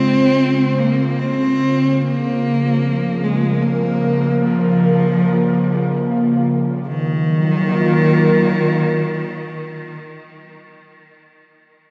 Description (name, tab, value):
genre	ambient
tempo	74 BPM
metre	3/4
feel	straight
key	Eb dorian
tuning	A4 = 445 Hz
part	warm cello	melody	0.0-10.0 s	Eb3 to C4	-21 LUFS	equal	diffuse ambient delay
part	airy breathy pad	sustained chords	0.0-10.1 s	Db3 to C5	-19 LUFS	equal	chorus
room	wet lush hall reverb, RT60 2.8 s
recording	worn, warbling old tape, cassette tape, warbly pitch drift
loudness	-17 LUFS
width	mono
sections	0.0-6.9 A section; 6.9-9.3 B section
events	none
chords	0.0 Dbmaj7; 2.0 Bbm; 6.9 Ebmadd9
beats	0.40 1.21 | 2.02 2.83 3.64 | 4.45 5.26 6.07 | 6.88 7.70 8.51